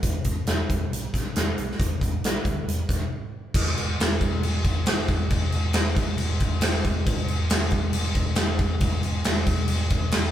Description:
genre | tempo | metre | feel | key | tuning
hard rock | 137 BPM | 4/4 | straight | unclear | A4 = 439 Hz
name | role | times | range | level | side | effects
hollow-body short-scale picked electric bass | bass | 0.0-10.3 s | E1 to D2 | -26 LUFS | equal | none
big rock drum kit | drums | 0.0-10.2 s | crash cymbal, hi-hat, kick drum, snare drum | -24 LUFS | equal | none
room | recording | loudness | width
light reverb | band playing live in one room | -22 LUFS | side -11 dB against mid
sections
0.0-3.6 A section; 3.6-10.3 B section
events
break 3.1-3.6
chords
none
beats
| 0.03 0.47 0.91 1.35 | 1.79 2.23 2.67 3.11 | 3.55 3.99 4.43 4.87 | 5.31 5.75 6.18 6.62 | 7.06 7.50 7.94 8.38 | 8.82 9.26 9.69 10.13

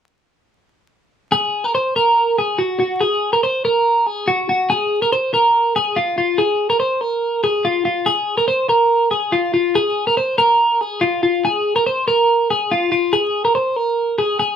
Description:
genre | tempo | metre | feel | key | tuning
indie pop | 142 BPM | 4/4 | straight | unclear | A4 = 440 Hz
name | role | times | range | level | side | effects
twelve-string electric guitar | solo | 1.3-14.6 s | F4 to C5 | -15 LUFS | equal | none
room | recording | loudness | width
moderate studio reverb, RT60 0.6 s | band playing live in one room, vinyl crackle | -15 LUFS | side -8 dB against mid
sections
1.3-14.6 A section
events
none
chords
none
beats
| 1.33 1.75 2.17 2.59 | 3.02 3.44 3.86 4.28 | 4.70 5.12 5.54 5.96 | 6.39 6.81 7.23 7.65 | 8.07 8.49 8.91 9.34 | 9.76 10.18 10.60 11.02 | 11.45 11.87 12.29 12.71 | 13.13 13.56 13.98 14.40

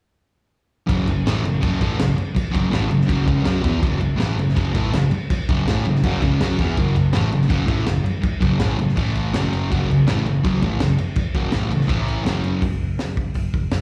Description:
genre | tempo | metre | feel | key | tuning
garage rock duo or trio | 164 BPM | 4/4 | straight | F# minor | A4 = 439 Hz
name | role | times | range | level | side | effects
fuzz guitar | riff | 0.9-12.6 s | F#2 to F#4 | -23 LUFS | equal | distortion, slapback echo
hollow-body short-scale picked electric bass | bass | 0.9-13.8 s | F#1 to F#2 | -25 LUFS | equal | overdrive
crunchy breakbeat drum kit | drums | 0.9-13.8 s | crash cymbal, hi-hat, kick drum, snare drum | -26 LUFS | equal | none
room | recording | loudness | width
small room ambience | live gig heard through the venue's PA, club reverb | -20 LUFS | mono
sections
0.9-12.6 A section; 12.6-13.8 B section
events
none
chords
0.9 F#m; 9.0 A5; 9.3 F#m; 11.9 A5; 12.3 F#5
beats
| 0.90 1.26 1.63 2.00 | 2.37 2.73 3.10 3.47 | 3.84 4.20 4.57 4.94 | 5.30 5.67 6.04 6.41 | 6.77 7.14 7.51 7.87 | 8.24 8.61 8.97 9.34 | 9.71 10.07 10.44 10.80 | 11.17 11.54 11.90 12.27 | 12.63 13.00 13.36 13.73

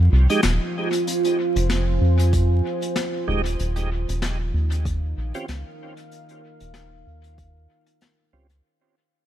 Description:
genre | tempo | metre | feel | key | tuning
ambient dub | 95 BPM | 4/4 | swing 56% on 16ths | unclear | A4 = 439 Hz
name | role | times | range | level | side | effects
deep dark ambient pad | sustained chords | 0.1-8.6 s | Eb4 to Ab5 | -27 LUFS | right 3 dB | chorus, built-in reverb
round analog bass | bass | 0.0-8.6 s | Eb1 to F2 | -20 LUFS | equal | none
tonewheel organ | stabs | 0.3-8.5 s | Ab3 to G4 | -28 LUFS | right 3 dB | chorus vibrato, slow rotary speaker, low-pass filter, dub echo
vintage brush drum kit | drums | 0.3-8.6 s | hi-hat, snare drum | -29 LUFS | left 3 dB | dub echo
electronic kick drum | drums | 2.3-7.5 s | none | -26 LUFS | equal | none
room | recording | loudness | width
studio reverb | vinyl crackle | -20 LUFS | side -12 dB against mid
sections
0.0-8.6 A section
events
fade-out 0.0-8.6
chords
0.0 Fm9; 3.6 Eb13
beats
0.43 | 1.06 1.70 2.33 2.96 | 3.59 4.22 4.85 5.49 | 6.12 6.75 7.38 8.01

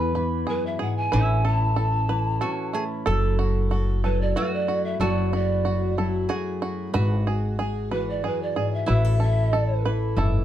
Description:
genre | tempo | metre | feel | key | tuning
acoustic folk duo or small band | 93 BPM | 3/4 | straight | unclear | A4 = 440 Hz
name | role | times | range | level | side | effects
mellow hollow pan flute | melody | 0.0-9.8 s | E4 to A5 | -27 LUFS | right 2 dB | plate reverb
metal-body resonator slide guitar | second line | 0.0-10.4 s | E4 to B4 | -32 LUFS | right 3 dB | none
fingerpicked steel-string acoustic guitar | accompaniment | 0.0-10.4 s | E2 to A4 | -28 LUFS | left 3 dB | none
bluegrass banjo | arpeggios | 0.0-10.4 s | A3 to B4 | -32 LUFS | right 4 dB | none
upright bass | bass | 0.0-10.4 s | F#1 to E2 | -23 LUFS | equal | none
room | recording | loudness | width
light reverb | dark, warm production | -21 LUFS | side -11 dB against mid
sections
0.0-10.4 A section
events
pan flute solo 0.0-10.4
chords
0.0 E; 1.1 A; 3.1 F#m7; 6.9 Eadd9/G#; 8.9 A5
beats
0.48 | 1.13 1.78 2.42 | 3.07 3.72 4.36 | 5.01 5.66 6.30 | 6.95 7.59 8.24 | 8.88 9.53 10.17

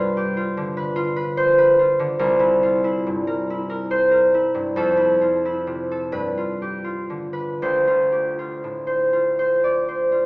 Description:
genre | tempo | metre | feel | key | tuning
classical, solo harp piece | 39-49 BPM (dotted quarters) | 6/8 | rubato | unclear | A4 = 436 Hz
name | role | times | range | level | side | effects
concert harp | solo | 0.0-10.3 s | C2 to D5 | -18 LUFS | equal | none
room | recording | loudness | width
wet recital hall reverb, RT60 1.4 s | heard from further back in the room, small speaker sound | -18 LUFS | side -27 dB against mid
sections
0.0-10.3 A section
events
none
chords
0.0 G9; 2.2 C7; 4.8 Fmaj7; 6.2 G9; 7.6 Dm7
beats
0.98 | 2.22 3.48 | 4.78 6.16 | 7.62 9.14

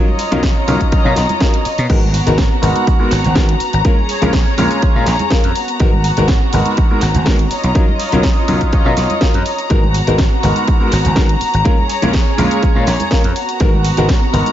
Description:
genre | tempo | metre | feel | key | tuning
filtered disco house | 123 BPM | 4/4 | straight | G# dorian | A4 = 440 Hz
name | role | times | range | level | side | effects
warm grand piano | accompaniment | 0.0-14.5 s | F#3 to A#4 | -19 LUFS | left 2 dB | phaser, sidechain pumping
dark studio string section | sustained chords | 0.0-14.5 s | B3 to A#5 | -19 LUFS | left 1 dB | sidechain pumping
tambourine and congas | percussion | 0.1-14.5 s | none | -26 LUFS | right 4 dB | none
house drum kit | drums | 0.2-14.5 s | crash cymbal, hi-hat, shaker, snare drum | -23 LUFS | equal | overdrive, sidechain pumping on hats, sidechain pumping on perc, sidechain pumping on cymbals
gritty slap bass | bass | 0.3-14.4 s | G#1 to B2 | -17 LUFS | equal | overdrive, sidechain pumping
electronic kick drum | drums | 0.4-14.2 s | none | -14 LUFS | equal | overdrive
room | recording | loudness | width
light reverb | nothing above 7.5 kHz | -12 LUFS | side -11 dB against mid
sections
0.0-14.5 A section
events
none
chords
0.0 Bmaj9#11; 1.9 G#m9; 3.9 A#m7; 5.6 G#m9; 7.5 Bmaj9#11; 9.7 G#m9; 11.7 A#m7; 13.4 G#m9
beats
0.43 0.92 1.41 | 1.90 2.39 2.87 3.36 | 3.85 4.34 4.83 5.31 | 5.80 6.29 6.78 7.26 | 7.75 8.24 8.73 9.22 | 9.70 10.19 10.68 11.17 | 11.65 12.14 12.63 13.12 | 13.61 14.09

